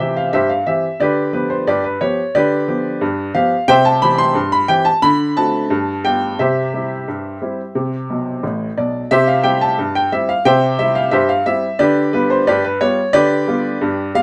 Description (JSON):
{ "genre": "ragtime piano", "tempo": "89 BPM", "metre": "2/4", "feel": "straight", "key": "C major", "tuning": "A4 = 440 Hz", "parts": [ { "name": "clear upright piano", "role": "solo", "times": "0.0-14.2 s", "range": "A1 to C6", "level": "-17 LUFS", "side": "equal", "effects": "none" } ], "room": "light reverb", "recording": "close, detailed microphones", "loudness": "-17 LUFS", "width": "mono", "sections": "0.0-9.1 A section; 9.1-14.2 A section", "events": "upright piano fill 8.1-9.1", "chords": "0.0 C; 1.0 G7; 3.7 C; 5.0 D7; 5.7 G7; 6.4 C; 11.8 G7" }